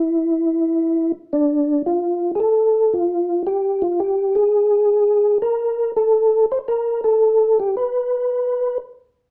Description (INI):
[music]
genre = jazz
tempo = 112 BPM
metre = 4/4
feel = swing 68% on 8ths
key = unclear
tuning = A4 = 440 Hz
[part]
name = percussive tonewheel organ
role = solo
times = 0.0-8.8 s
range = D4 to C5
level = -19 LUFS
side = equal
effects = slow rotary speaker, chorus vibrato
[sound]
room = wet studio reverb, RT60 0.6 s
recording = none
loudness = -19 LUFS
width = mono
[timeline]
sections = 0.0-9.3 A section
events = none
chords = none